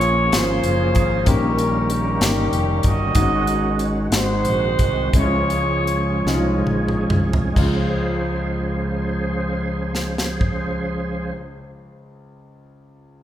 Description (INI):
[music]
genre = slow gospel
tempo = 42-64 BPM (dotted quarters)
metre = 6/8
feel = straight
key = Db major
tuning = A4 = 439 Hz
[part]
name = warm horn section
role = melody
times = 0.0-6.7 s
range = Db4 to Eb5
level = -22 LUFS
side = equal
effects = none
[part]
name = warm concert grand piano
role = accompaniment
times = 0.0-13.2 s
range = Db2 to Bb4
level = -25 LUFS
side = left 2 dB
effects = none
[part]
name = overdriven tonewheel organ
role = sustained chords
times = 0.0-11.3 s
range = Db3 to C5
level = -25 LUFS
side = right 2 dB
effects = fast rotary speaker, chorus vibrato
[part]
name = fingered electric bass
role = bass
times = 0.0-11.3 s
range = F1 to Db2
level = -24 LUFS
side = equal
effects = none
[part]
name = tight funk drum kit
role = drums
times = 0.0-10.6 s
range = crash cymbal, hi-hat, kick drum, snare drum, toms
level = -21 LUFS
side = equal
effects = none
[sound]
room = wet recital hall reverb, RT60 1.4 s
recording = recorded in a church or concert hall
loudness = -17 LUFS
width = side -11 dB against mid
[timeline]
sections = 0.0-7.6 A section; 7.6-13.2 B section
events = slowing down 3.2-7.6; drum fill 6.3-7.6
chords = 0.0 Bbm7; 1.3 Eb7/Bb; 3.2 Ab7sus4; 4.1 Ab7; 5.1 Dbmaj7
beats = 0.33 | 1.27 2.21 | 3.15 4.12 | 5.13 6.26 | 7.56 8.99 | 10.41 11.83